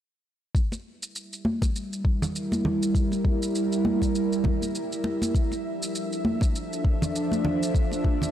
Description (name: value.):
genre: organic downtempo.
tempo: 100 BPM.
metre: 4/4.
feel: swing 58% on 16ths.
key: unclear.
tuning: A4 = 440 Hz.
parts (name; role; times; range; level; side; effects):
bowed-like drone; sustained chords; 1.8-8.3 s; F3 to E5; -27 LUFS; right 1 dB; built-in reverb, sidechain pumping, shimmer reverb.
electronic kick drum; drums; 0.5-8.2 s; none; -24 LUFS; left 1 dB; overdrive.
shaker; drums; 0.6-8.3 s; none; -37 LUFS; right 1 dB; overdrive.
congas; percussion; 0.7-8.3 s; none; -29 LUFS; equal; none.
room: moderate lush hall reverb, RT60 3.0 s.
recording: blown-out, overdriven recording, overdrive.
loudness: -23 LUFS.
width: side -11 dB against mid.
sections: 0.5-8.3 A section.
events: filter sweep on synth drone 0.5-8.3.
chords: 0.5 Edim; 5.3 Dmadd9.